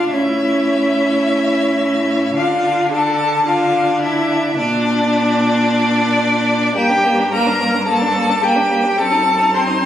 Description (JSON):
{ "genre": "quick classical-period movement for string quartet", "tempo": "108 BPM", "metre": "4/4", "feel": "rubato", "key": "G minor from 6.8 s", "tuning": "A4 = 444 Hz", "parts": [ { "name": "rich violin", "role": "melody", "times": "0.0-9.9 s", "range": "D5 to C6", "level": "-18 LUFS", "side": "left 2 dB", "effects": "none" }, { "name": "rich violin", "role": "second line", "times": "0.0-9.9 s", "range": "Bb3 to D#4", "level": "-18 LUFS", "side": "left 1 dB", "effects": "none" }, { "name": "rich viola", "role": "accompaniment", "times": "0.0-9.9 s", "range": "D4 to C5", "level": "-21 LUFS", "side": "right 1 dB", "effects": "none" }, { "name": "rich cello", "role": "bass", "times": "0.0-9.9 s", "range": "F#2 to D3", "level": "-22 LUFS", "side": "right 2 dB", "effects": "none" } ], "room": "wet recital hall reverb, RT60 1.4 s", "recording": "recorded on a phone in the room, club reverb", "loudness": "-13 LUFS", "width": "side -11 dB against mid", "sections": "0.0-9.9 A section", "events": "none", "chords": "0.1 A; 2.4 Dm; 4.6 Bb; 6.8 Gm; 9.0 F#dim7", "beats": "| 0.12 0.68 1.24 1.80 | 2.36 2.92 3.46 4.01 | 4.56 5.11 5.66 6.21 | 6.76 7.32 7.87 8.42 | 8.98 9.54" }